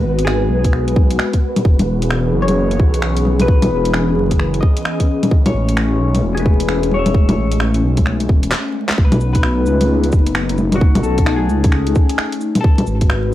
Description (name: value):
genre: future garage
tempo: 131 BPM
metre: 4/4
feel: swing 63% on 16ths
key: unclear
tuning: A4 = 440 Hz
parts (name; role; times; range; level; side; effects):
- airy breathy pad; sustained chords; 0.0-13.3 s; E3 to B4; -21 LUFS; left 1 dB; chorus, sidechain pumping
- swelling detuned saw bass; bass; 0.0-13.3 s; E1 to C#2; -18 LUFS; equal; sidechain pumping
- wind-like tuned noise texture; texture; 0.0-8.5 s; B3 to B4; -29 LUFS; left 1 dB; built-in reverb
- clean electric guitar; accompaniment; 0.2-12.9 s; F#4 to E5; -23 LUFS; left 4 dB; phaser, sidechain pumping, tape echo
- garage drum kit; drums; 0.2-13.2 s; bongos, cabasa, finger snaps, handclaps, hi-hat; -20 LUFS; left 1 dB; studio reverb
- electronic kick drum; drums; 0.6-13.1 s; none; -13 LUFS; equal; studio reverb
room: little or no reverb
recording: dry, gritty hardware recording, vinyl crackle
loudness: -13 LUFS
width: side -14 dB against mid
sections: 0.0-9.0 A section; 9.0-13.3 A section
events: break 8.5-9.0; drum fill 8.5-9.0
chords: 0.0 G#m7; 1.6 E6; 5.3 Amaj7; 9.0 B13; 12.6 G#m7